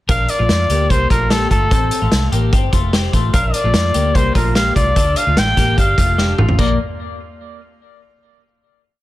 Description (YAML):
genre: jangly indie pop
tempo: 148 BPM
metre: 4/4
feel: straight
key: Bb major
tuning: A4 = 438 Hz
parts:
  - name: warm trumpet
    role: melody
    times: 0.1-6.8 s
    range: A4 to G5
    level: -19 LUFS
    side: equal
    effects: ping-pong delay
  - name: twelve-string electric guitar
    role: arpeggios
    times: 0.1-6.8 s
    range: A3 to Bb4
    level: -22 LUFS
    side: left 4 dB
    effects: none
  - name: vintage muted fingered electric bass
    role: bass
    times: 0.1-6.8 s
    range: F1 to F2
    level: -18 LUFS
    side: equal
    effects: none
  - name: vintage drum kit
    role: drums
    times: 0.1-6.7 s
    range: crash cymbal, hi-hat, kick drum, snare drum, toms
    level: -17 LUFS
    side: equal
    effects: none
room: light reverb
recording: dense, heavily limited modern master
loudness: -13 LUFS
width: side -16 dB against mid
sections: 0.1-6.6 verse; 6.6-8.2 final chord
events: drum fill 6.2-6.6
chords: 0.1 Bb; 1.7 F/A; 3.3 Bb; 5.0 Dm; 6.6 N.C.